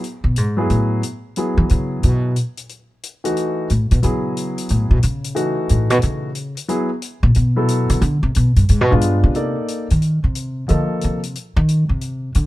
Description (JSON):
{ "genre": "modal jazz", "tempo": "180 BPM", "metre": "4/4", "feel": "swing 64% on 8ths", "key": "F# dorian, C dorian from 9.4 s", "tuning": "A4 = 440 Hz", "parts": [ { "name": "hi-hat", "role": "drums", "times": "0.0-12.4 s", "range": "none", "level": "-32 LUFS", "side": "left 6 dB", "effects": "none" }, { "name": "upright bass", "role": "bass", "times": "0.2-12.5 s", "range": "G2 to E3", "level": "-16 LUFS", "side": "equal", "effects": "none" }, { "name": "warm concert grand piano", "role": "accompaniment", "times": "0.6-11.2 s", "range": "E3 to Eb5", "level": "-22 LUFS", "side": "left 1 dB", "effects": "none" } ], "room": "little or no reverb", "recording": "close, detailed microphones", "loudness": "-16 LUFS", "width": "side -17 dB against mid", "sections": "0.0-9.4 A section; 9.4-12.5 A section", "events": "upright bass solo 0.0-12.5", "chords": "0.0 F#m11; 8.0 G7b9; 9.4 Cm11" }